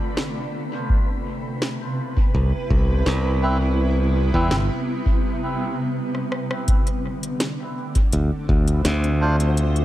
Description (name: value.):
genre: ambient dub.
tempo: 83 BPM.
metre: 4/4.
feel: straight.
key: D dorian.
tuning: A4 = 443 Hz.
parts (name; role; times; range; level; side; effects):
granular cloud pad; sustained chords; 0.0-9.8 s; C3 to D5; -26 LUFS; equal; built-in reverb.
wind-like tuned noise texture; texture; 0.0-5.2 s; B3 to B5; -37 LUFS; right 1 dB; built-in reverb.
organic electronic drum kit; drums; 0.2-9.8 s; hi-hat, rim click, snare drum; -28 LUFS; equal; overdrive, dub echo.
electronic kick drum; drums; 0.9-8.6 s; none; -21 LUFS; equal; none.
modern bright fingered electric bass; bass; 2.3-9.8 s; G1 to E2; -19 LUFS; equal; none.
melodica; stabs; 3.4-4.6, 9.2-9.4 s; C4 to C5; -30 LUFS; right 1 dB; dub echo.
room: light reverb, digital ambience.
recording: none.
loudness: -19 LUFS.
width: side -14 dB against mid.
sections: 0.0-6.7 A section; 6.7-9.8 B section.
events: break 5.2-6.7; drum fill 6.1-6.7.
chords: 0.0 Dm7; 0.9 Cmaj7; 6.7 Dm7.